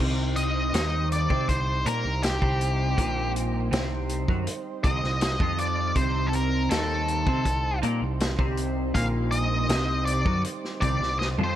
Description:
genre	psychedelic rock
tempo	80 BPM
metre	4/4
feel	straight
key	C dorian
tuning	A4 = 439 Hz
part	combo organ	sustained chords	0.0-11.6 s	G3 to C5	-36 LUFS	right 6 dB	lush chorus
part	twelve-string electric guitar	riff	0.0-11.6 s	Bb2 to C4	-29 LUFS	equal	flanger, double-tracked left and right
part	growling picked electric bass	bass	0.0-11.6 s	Bb1 to C3	-29 LUFS	equal	overdrive
part	vintage drum kit	drums	0.0-11.6 s	hi-hat, kick drum, snare drum, toms	-28 LUFS	equal	none
part	octave-fuzz lead guitar	melody	0.4-11.6 s	G4 to F5	-29 LUFS	left 1 dB	distortion, tape echo
room	light reverb, studio reverb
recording	none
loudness	-23 LUFS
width	side -12 dB against mid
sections	0.0-11.6 A section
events	lead electric guitar solo 0.0-11.6; drum fill 11.2-11.6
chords	0.0 Cm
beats	| 0.00 0.75 1.49 2.24 | 2.98 3.73 4.47 5.22 | 5.96 6.71 7.46 8.20 | 8.95 9.70 10.45 11.20

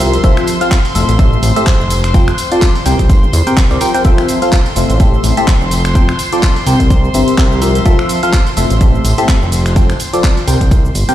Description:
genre	piano house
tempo	126 BPM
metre	4/4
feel	swing 57% on 16ths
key	F major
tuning	A4 = 440 Hz
part	warm studio violin section	sustained chords	0.0-11.1 s	C5 to C6	-22 LUFS	left 1 dB	sidechain pumping
part	barking FM electric piano	riff	0.0-11.1 s	A2 to G5	-15 LUFS	left 1 dB	phaser, sidechain pumping, tape echo
part	fat analog bass	bass	0.0-11.0 s	F1 to E2	-14 LUFS	equal	sidechain pumping
part	house drum kit	drums	0.0-11.1 s	finger snaps, handclaps, hi-hat, shaker	-21 LUFS	right 1 dB	none
part	tambourine	percussion	0.0-11.1 s	none	-30 LUFS	left 6 dB	none
part	electronic kick drum	drums	0.2-10.8 s	none	-11 LUFS	equal	none
room	light reverb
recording	played on a big sound system in a bare room, stone room reverb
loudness	-9 LUFS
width	side -12 dB against mid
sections	0.0-11.1 A section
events	none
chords	0.2 Fmaj7; 1.2 Am7; 1.9 F; 2.9 C7; 4.0 Fmaj7; 5.0 Am7; 5.7 F; 6.7 C7; 7.9 Fmaj7; 8.8 Am7; 9.5 F; 10.5 C5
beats	| 0.24 0.71 1.19 1.67 | 2.14 2.62 3.10 3.57 | 4.05 4.52 5.00 5.48 | 5.95 6.43 6.90 7.38 | 7.86 8.33 8.81 9.29 | 9.76 10.24 10.71

